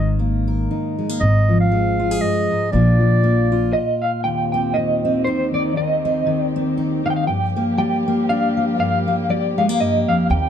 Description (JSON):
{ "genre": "acoustic folk duo or small band", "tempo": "119 BPM", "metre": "3/4", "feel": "swing 56% on 8ths", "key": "Eb major", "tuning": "A4 = 440 Hz", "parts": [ { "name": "warm clarinet", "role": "second line", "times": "0.0-4.0 s", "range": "D5 to F5", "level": "-22 LUFS", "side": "right 2 dB", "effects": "none" }, { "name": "fingerpicked steel-string acoustic guitar", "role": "accompaniment", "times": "0.0-10.5 s", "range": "Eb2 to Bb4", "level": "-20 LUFS", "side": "left 1 dB", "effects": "none" }, { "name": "upright bass", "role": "bass", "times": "0.0-3.7, 10.3-10.5 s", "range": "Ab1 to Eb2", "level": "-18 LUFS", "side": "equal", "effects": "none" }, { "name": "electric guitar through a small old amp", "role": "melody", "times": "3.7-10.5 s", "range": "C5 to G5", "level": "-21 LUFS", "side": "right 1 dB", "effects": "tremolo, plate reverb" }, { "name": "dark studio string section", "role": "sustained chords", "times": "4.2-10.5 s", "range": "Eb3 to G4", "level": "-28 LUFS", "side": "left 1 dB", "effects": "none" } ], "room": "light reverb", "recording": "dark, warm production", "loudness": "-16 LUFS", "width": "side -9 dB against mid", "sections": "0.0-4.3 A section; 4.3-10.5 B section", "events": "clarinet solo 0.0-4.3; stop 3.7-4.3", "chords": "0.0 Absus2; 1.2 Fm/Ab; 2.7 Bb; 4.3 Eb6; 7.3 Gm7" }